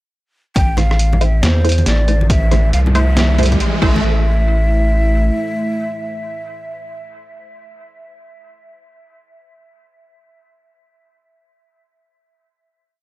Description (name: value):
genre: deep dubstep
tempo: 138 BPM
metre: 4/4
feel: swing 62% on 16ths, half-time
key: A minor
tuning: A4 = 437 Hz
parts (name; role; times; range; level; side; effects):
- breathy mellow ney; melody; 0.6-7.0 s; C5 to G5; -24 LUFS; right 1 dB; dub echo
- dark analog pad; sustained chords; 0.6-7.0 s; E3 to E4; -26 LUFS; equal; chorus
- saturated sub bass; bass; 0.6-5.3 s; A1 to E2; -14 LUFS; equal; tube saturation
- electronic kick drum; drums; 0.6-3.9 s; none; -17 LUFS; equal; overdrive
- trip hop sampler-style drum kit; drums; 0.6-3.9 s; crash cymbal, hi-hat, rim click, snare drum; -22 LUFS; equal; overdrive
- riser; sound effects; 1.9-4.0 s; none; -25 LUFS; right 1 dB; none
- filtered dub chord stab; stabs; 0.8-7.0 s; A3 to C5; -24 LUFS; right 1 dB; phaser, dub echo
- congas; percussion; 0.8-4.0 s; none; -24 LUFS; left 1 dB; none
room: little or no reverb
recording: dry, gritty hardware recording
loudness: -13 LUFS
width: side -18 dB against mid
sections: 0.6-4.0 build; 4.0-7.5 final hit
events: build-up 0.6-4.0; filter sweep on synth stab 0.6-4.0; riser 1.9-4.0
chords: 0.6 Am